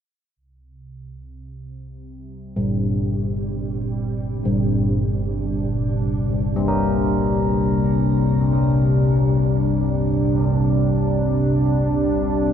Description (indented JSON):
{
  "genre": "dark ambient drone",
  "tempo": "49 BPM",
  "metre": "4/4",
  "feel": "straight",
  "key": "unclear",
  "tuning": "A4 = 440 Hz",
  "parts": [
    { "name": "sweeping resonant pad", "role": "sustained chords", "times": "0.4-12.5 s", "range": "C3 to D4", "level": "-24 LUFS", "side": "right 1 dB", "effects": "chorus, shimmer reverb" },
    { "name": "deep rumbling drone", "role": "drone", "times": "0.7-12.5 s", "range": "C2 to C3", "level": "-23 LUFS", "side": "equal", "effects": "built-in reverb" },
    { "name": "carillon bells", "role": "arpeggios", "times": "2.6-12.5 s", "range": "G2 to Bb4", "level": "-22 LUFS", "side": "left 1 dB", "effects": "diffuse ambient delay" }
  ],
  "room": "wet cathedral reverb, RT60 6.5 s",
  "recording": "in a vast, echoing space",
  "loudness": "-18 LUFS",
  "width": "side -8 dB against mid",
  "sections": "0.4-12.5 A section",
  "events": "fade-in on analog synth pad 0.4-12.5",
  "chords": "0.4 C5"
}